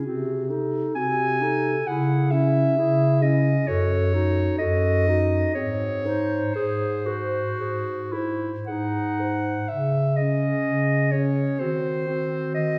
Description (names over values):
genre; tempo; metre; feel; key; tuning
classical, lyrical piece for single-reed quartet; 52-68 BPM; 4/4; rubato; C# minor; A4 = 440 Hz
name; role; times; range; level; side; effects
clear clarinet; melody; 0.0-12.8 s; G#4 to G#5; -28 LUFS; equal; none
dark clarinet; second line; 0.0-12.8 s; E4 to B#4; -33 LUFS; equal; none
clear clarinet; accompaniment; 0.0-12.8 s; C4 to G#4; -31 LUFS; equal; none
dark bass clarinet; bass; 0.0-12.8 s; F#2 to Eb3; -27 LUFS; equal; none
room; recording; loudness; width
wet recital hall reverb, RT60 1.5 s; heard from further back in the room; -23 LUFS; mono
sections
0.0-12.8 A section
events
none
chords
0.1 Cdim7; 1.9 C#m; 3.7 D#dim/F#; 5.6 G#; 9.7 C#5; 11.6 Cdim/Eb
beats
0.05 0.96 | 1.88 2.78 3.69 4.61 | 5.57 6.56 7.59 8.69 | 9.70 10.66 11.60 12.56